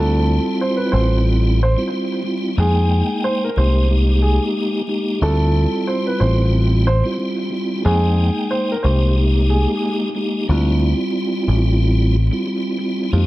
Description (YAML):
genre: hip hop, boom-bap hip-hop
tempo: 91 BPM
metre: 4/4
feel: swing 57% on 16ths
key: unclear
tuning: A4 = 440 Hz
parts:
  - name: warm upright piano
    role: melody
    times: 0.0-9.7 s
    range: Ab4 to C5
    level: -23 LUFS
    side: right 1 dB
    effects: high-pass filter, low-pass filter, analog delay
  - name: tonewheel organ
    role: accompaniment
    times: 0.0-13.3 s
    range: G3 to G5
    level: -20 LUFS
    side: equal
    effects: overdrive, chorus vibrato, fast rotary speaker, high-pass filter, low-pass filter, analog delay
  - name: deep dub picked electric bass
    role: bass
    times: 0.0-13.3 s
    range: A1 to F2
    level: -15 LUFS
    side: equal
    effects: none
room: light reverb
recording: echo-heavy mix, vinyl crackle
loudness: -15 LUFS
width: side -17 dB against mid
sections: 0.0-13.3 A section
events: none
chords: 0.0 Dm11; 2.6 Fm11; 5.2 Dm11; 7.9 Fm11; 10.5 Dm11